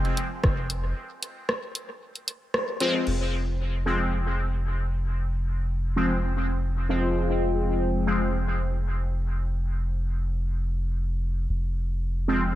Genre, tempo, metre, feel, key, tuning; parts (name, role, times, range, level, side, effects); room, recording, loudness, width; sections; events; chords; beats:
dub techno; 114 BPM; 4/4; swing 53% on 16ths; F minor; A4 = 440 Hz
punchy analog drum machine; drums; 0.0-3.2 s; crash cymbal, hi-hat, rim click; -29 LUFS; equal; dub echo
soft dub sub bass; bass; 0.4-12.6 s; F1; -26 LUFS; equal; sidechain pumping
electronic kick drum; drums; 0.4-0.5 s; -25 LUFS; equal
resonant sweep polysynth; stabs; 2.8-8.2, 12.3-12.4 s; F3 to C4; -27 LUFS; left 1 dB; chorus, phaser, sidechain pumping, dub echo
moderate plate reverb, RT60 1.9 s; dreamy mix soaked in reverb; -24 LUFS; side -14 dB against mid
0.0-3.1 A section; 3.1-12.6 B section
break 1.0-3.1; band accent 2.5
0.0 N.C.; 3.1 Fm
0.43 | 0.96 1.49 2.01 2.54 | 3.07 3.59 4.12 4.65 | 5.17 5.70 6.22 6.75 | 7.28 7.80 8.33 8.86 | 9.38 9.91 10.44 10.96 | 11.49 12.01 12.54